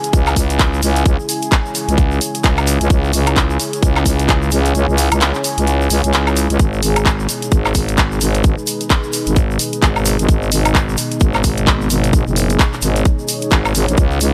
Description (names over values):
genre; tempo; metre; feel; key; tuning
bass house; 130 BPM; 4/4; swing 59% on 16ths; G# minor; A4 = 440 Hz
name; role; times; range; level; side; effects
dark analog pad; sustained chords; 0.0-14.3 s; B3 to E5; -30 LUFS; equal; none
garage drum kit; drums; 0.0-14.3 s; handclaps, hi-hat, woodblock; -22 LUFS; equal; none
tube shaker; percussion; 0.0-14.3 s; none; -29 LUFS; equal; none
deep dark ambient pad; texture; 0.0-14.3 s; D#4 to G#5; -26 LUFS; equal; chorus, built-in reverb, sidechain pumping
growling FM bass; bass; 0.1-14.3 s; F#1 to C#2; -19 LUFS; equal; sidechain pumping
electronic kick drum; drums; 0.1-14.1 s; none; -17 LUFS; equal; none
room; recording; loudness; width
digital ambience; none; -15 LUFS; mono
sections
0.0-14.3 A section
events
kick drops out 4.7-6.6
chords
0.0 C#m; 6.6 G#m